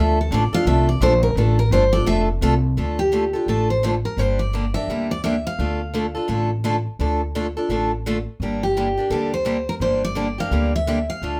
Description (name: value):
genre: acoustic string swing (jazz manouche)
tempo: 171 BPM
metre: 4/4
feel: swing 60% on 8ths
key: D minor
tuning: A4 = 440 Hz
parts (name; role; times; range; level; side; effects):
- picked steel-string acoustic guitar; melody; 0.0-6.5, 8.6-11.4 s; G4 to F5; -25 LUFS; equal; none
- picked steel-string acoustic guitar; accompaniment; 0.0-11.4 s; D3 to A4; -26 LUFS; equal; none
- upright bass; bass; 0.0-11.4 s; F1 to D2; -25 LUFS; equal; none
room: moderate studio ambience, RT60 0.5 s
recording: none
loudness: -21 LUFS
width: mono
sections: 0.0-2.8 A section; 2.8-11.4 B section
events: steel-string acoustic guitar solo 0.0-2.8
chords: 0.0 Dm; 4.2 Gm; 5.6 Dm; 8.4 Gm